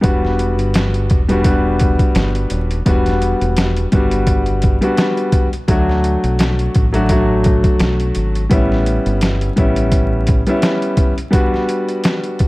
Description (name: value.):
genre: hip hop, boom-bap hip-hop.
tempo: 85 BPM.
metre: 4/4.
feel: swing 56% on 16ths.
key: E dorian.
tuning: A4 = 440 Hz.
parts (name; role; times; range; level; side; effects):
warm grand piano; accompaniment; 0.0-12.5 s; F#3 to F#4; -17 LUFS; left 1 dB; cassette tape, high-pass filter, low-pass filter.
deep dub fingered electric bass; bass; 0.0-10.4 s; D#1 to D2; -18 LUFS; equal; none.
trip hop sampler-style drum kit; drums; 0.0-12.5 s; hi-hat, kick drum, snare drum; -16 LUFS; equal; overdrive.
room: little or no reverb.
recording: dark, warm production, vinyl crackle.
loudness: -13 LUFS.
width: side -20 dB against mid.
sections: 0.0-12.5 A section.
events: none.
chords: 0.0 Em7; 5.7 D; 8.5 A7; 11.3 Gmaj7.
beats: | 0.04 0.75 1.45 2.16 | 2.86 3.57 4.28 4.98 | 5.69 6.39 7.10 7.81 | 8.51 9.22 9.92 10.63 | 11.34 12.04.